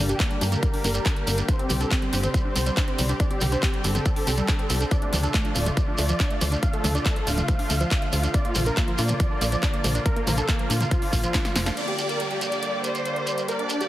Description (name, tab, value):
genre	uplifting trance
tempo	140 BPM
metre	4/4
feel	straight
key	G minor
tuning	A4 = 436 Hz
part	supersaw chords	melody	0.0-13.9 s	Bb3 to F5	-30 LUFS	right 1 dB	cassette tape, sidechain pumping, low-pass filter, dub echo
part	lush unison pad	sustained chords	0.0-13.9 s	D3 to G4	-32 LUFS	equal	chorus, sidechain pumping
part	tight sequencer bass	bass	0.0-11.7 s	D1 to Bb2	-24 LUFS	equal	sidechain pumping
part	wide unison pluck	arpeggios	0.1-11.7 s	F3 to D4	-33 LUFS	right 2 dB	sidechain pumping, dub echo
part	big-room dance drum kit	drums	0.1-13.9 s	handclaps, hi-hat, snare drum, toms	-30 LUFS	left 1 dB	none
part	shekere	percussion	0.1-13.9 s	none	-32 LUFS	right 3 dB	none
part	electronic kick drum	drums	0.2-11.4 s	none	-24 LUFS	equal	none
part	warm symphonic violin section	second line	11.8-13.9 s	C5 to D5	-28 LUFS	equal	dub echo
part	downlifter	sound effects	11.8-13.9 s	none	-35 LUFS	equal	none
room	light reverb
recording	heavily compressed radio sound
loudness	-21 LUFS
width	side -14 dB against mid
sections	0.0-11.8 A section; 11.8-13.9 B section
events	drum fill 11.3-11.8; band accent 11.7; filter sweep on supersaw synth 11.8-13.9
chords	0.0 Gm; 1.5 Csus2; 4.9 Dm; 8.3 Bb; 11.8 Gm